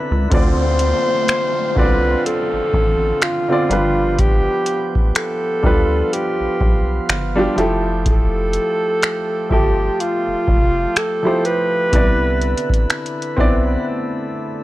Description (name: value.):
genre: contemporary R&B.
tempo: 62 BPM.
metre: 4/4.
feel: swing 58% on 16ths.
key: D dorian.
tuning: A4 = 440 Hz.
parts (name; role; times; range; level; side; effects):
warm baby grand piano; accompaniment; 0.0-14.6 s; C3 to E5; -22 LUFS; equal; none.
pipe organ, sparkling flutes; sustained chords; 0.0-14.6 s; D3 to B4; -26 LUFS; right 2 dB; none.
rubbery square bass; bass; 0.1-13.8 s; F1 to D2; -21 LUFS; equal; none.
breathy alto saxophone; melody; 0.3-12.9 s; F4 to C5; -20 LUFS; equal; analog delay.
booming analog drum machine; drums; 0.3-13.6 s; finger snaps, hi-hat, kick drum; -16 LUFS; equal; none.
downlifter; sound effects; 0.3-8.1 s; none; -29 LUFS; equal; none.
room: studio ambience.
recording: dry, gritty hardware recording, cassette tape.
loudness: -15 LUFS.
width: side -16 dB against mid.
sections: 0.3-14.6 A section.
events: break 0.0-0.3, 13.9-14.6.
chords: 0.3 Dm7; 3.7 G7; 7.6 Fmaj9; 11.9 Cmaj9.